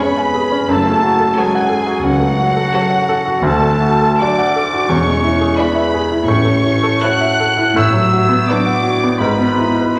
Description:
classical, romantic movement for piano and orchestra; 72-90 BPM; 4/4; rubato; F# minor, A major from 3.5 s; A4 = 442 Hz
rich symphonic violin section; melody; 0.0-10.0 s; F#5 to F#6; -24 LUFS; equal
warm baby grand piano; melody; 0.0-10.0 s; D2 to G#5; -18 LUFS; equal
clear studio violin section; second line; 0.0-9.0 s; C#4 to B4; -27 LUFS; equal
mellow hollow silver concert flute; second line; 0.0-10.0 s; F#5 to F#6; -23 LUFS; equal
warm clarinet; second line; 0.0-10.0 s; F#4 to F#5; -26 LUFS; equal
clear symphonic viola section; accompaniment; 0.0-9.0 s; F#3 to D4; -30 LUFS; equal
mellow French horn section; sustained chords; 0.0-10.0 s; F#3 to F#4; -25 LUFS; equal
clear tuba; bass; 0.7-9.8 s; E1 to D2; -28 LUFS; equal
rich symphonic cello section; bass; 0.7-9.8 s; C#2 to A2; -28 LUFS; equal
rich symphonic double bass section; bass; 0.7-9.8 s; E1 to D2; -30 LUFS; equal
wet recital hall reverb, RT60 1.3 s; -15 LUFS; mono
0.0-10.0 A section
0.0 C#7/E#; 0.7 F#m; 3.5 D; 4.9 E7; 6.3 A; 7.8 Bm7/A; 9.2 E/G#

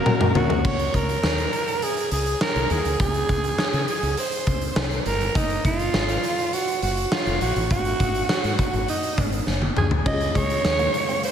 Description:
1980s-style pop; 102 BPM; 4/4; straight; A4 = 440 Hz
raspy alto saxophone; melody; 0.0-11.3 s; Eb4 to Eb5; -24 LUFS; right 2 dB; slapback echo
FM electric piano with tremolo; accompaniment; 0.0-0.7, 10.1-11.3 s; Ab3 to Bb4; -29 LUFS; left 5 dB; slapback echo
overdriven semi-hollow guitar; accompaniment; 0.0-1.2 s; Db4 to Gb4; -40 LUFS; left 2 dB
sweeping resonant pad; sustained chords; 0.0-0.6, 10.1-11.3 s; Db3 to F5; -33 LUFS; left 1 dB
big rock drum kit; drums; 0.1-11.3 s; crash cymbal, hi-hat, kick drum, snare drum, toms; -24 LUFS; left 1 dB
direct-recorded clean electric guitar; riff; 0.2-0.6, 10.1-11.3 s; Ab3 to Db4; -33 LUFS; right 4 dB
woody fretless electric bass; bass; 0.4-10.9 s; F1 to Db3; -27 LUFS; equal
wet lush hall reverb, RT60 2.0 s, studio ambience; big arena sound; -20 LUFS; side -8 dB against mid
0.6-11.3 A section
drum fill 0.0-0.6, 9.5-10.1
0.0 Gb; 0.6 Db5; 5.4 Gbmaj7(no3); 7.7 Ab5; 10.1 Db

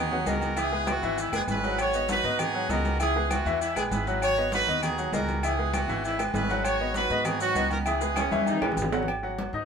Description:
latin, salsa; 197 BPM; 4/4; straight; G# minor; A4 = 440 Hz
brilliant horn section; melody; 0.0-8.7 s; G#3 to C#5; -28 LUFS; right 2 dB
bright upright piano; accompaniment; 0.0-9.7 s; E3 to D#6; -30 LUFS; left 4 dB
upright bass; bass; 0.0-9.7 s; F#1 to G#2; -33 LUFS; equal
congas; percussion; 0.1-9.7 s; -34 LUFS; left 1 dB
agogo bells and timbales; percussion; 0.3-9.5 s; -33 LUFS; right 4 dB
maracas; percussion; 0.3-9.1 s; -42 LUFS; left 8 dB
claves; percussion; 0.6-9.2 s; -39 LUFS; left 7 dB
clear saxophone section; second line; 8.2-9.1 s; B3 to D#4; -32 LUFS; right 1 dB
moderate studio reverb, RT60 0.5 s; minimal, uncompressed stereo recording; -24 LUFS; side -6 dB against mid
0.0-9.1 A section
drum fill 8.3-9.1
0.0 G#m7; 0.6 C#m7; 1.8 G#m7; 3.0 C#m7; 4.2 G#m7; 5.4 C#m7; 6.6 G#m7; 7.9 C#m7; 9.1 G#5

